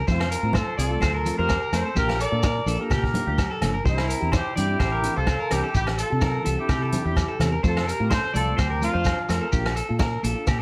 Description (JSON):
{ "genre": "highlife guitar band", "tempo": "127 BPM", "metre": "4/4", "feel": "swing 54% on 16ths", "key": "C mixolydian", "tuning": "A4 = 437 Hz", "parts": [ { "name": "electric guitar at the edge of break-up", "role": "arpeggios", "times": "0.0-10.6 s", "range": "G4 to D5", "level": "-32 LUFS", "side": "equal", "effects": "phaser, tape echo" }, { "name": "warm horn section", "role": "melody", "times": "0.1-9.8 s", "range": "C4 to D5", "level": "-30 LUFS", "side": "equal", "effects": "plate reverb" }, { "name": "mellow electric guitar", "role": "accompaniment", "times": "0.1-10.5 s", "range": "E3 to G4", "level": "-34 LUFS", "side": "equal", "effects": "none" }, { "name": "fingered electric bass", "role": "bass", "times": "0.1-10.6 s", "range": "G1 to C3", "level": "-29 LUFS", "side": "equal", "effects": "none" }, { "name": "vintage drum kit", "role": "drums", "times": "0.1-10.6 s", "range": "hi-hat, kick drum, rim click", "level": "-30 LUFS", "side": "equal", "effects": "none" }, { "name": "congas", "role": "percussion", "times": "0.1-10.6 s", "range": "none", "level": "-33 LUFS", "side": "equal", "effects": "none" }, { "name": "shekere", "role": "percussion", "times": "0.1-10.6 s", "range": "none", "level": "-34 LUFS", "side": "equal", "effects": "none" }, { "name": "agogo bells", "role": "percussion", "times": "0.2-10.6 s", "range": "none", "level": "-37 LUFS", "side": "equal", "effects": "none" } ], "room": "light reverb", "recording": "none", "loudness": "-24 LUFS", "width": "mono", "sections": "0.0-10.6 A section", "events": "none", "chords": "0.1 F; 2.0 Bb; 3.9 Cadd9; 7.6 F; 9.5 Bb" }